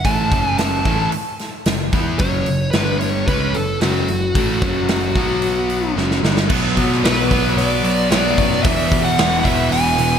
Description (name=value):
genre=hard rock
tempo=112 BPM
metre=4/4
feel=straight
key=F# minor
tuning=A4 = 437 Hz
part: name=dark smooth lead guitar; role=melody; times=0.0-10.2 s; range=F#4 to A5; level=-21 LUFS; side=left 1 dB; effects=overdrive, ping-pong delay
part: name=overdriven semi-hollow guitar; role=riff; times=0.0-10.2 s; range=E2 to E4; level=-23 LUFS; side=right 8 dB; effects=none
part: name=picked electric bass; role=bass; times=0.0-10.2 s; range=E1 to B2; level=-23 LUFS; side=equal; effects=none
part: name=big rock drum kit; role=drums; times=0.0-10.1 s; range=crash cymbal, hi-hat, kick drum, snare drum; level=-20 LUFS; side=equal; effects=gated reverb
part: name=distorted electric guitar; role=riff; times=0.1-10.2 s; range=E2 to E4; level=-24 LUFS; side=left 9 dB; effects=distortion
part: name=analog string pad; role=sustained chords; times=7.0-10.2 s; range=B3 to F#5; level=-32 LUFS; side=equal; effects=none
part: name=high-gain distorted guitar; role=riff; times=6.5-10.2 s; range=E2 to B3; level=-22 LUFS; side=right 2 dB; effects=distortion
room=moderate lush hall reverb, RT60 2.3 s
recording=bright 1980s-style digital production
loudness=-15 LUFS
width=side -8 dB against mid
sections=0.0-6.5 A section; 6.5-10.2 B section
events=drum fill 6.0-6.5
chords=0.0 F#m; 2.7 G5; 3.3 F#m; 5.2 B5; 6.0 F#5; 6.5 Bm; 8.6 E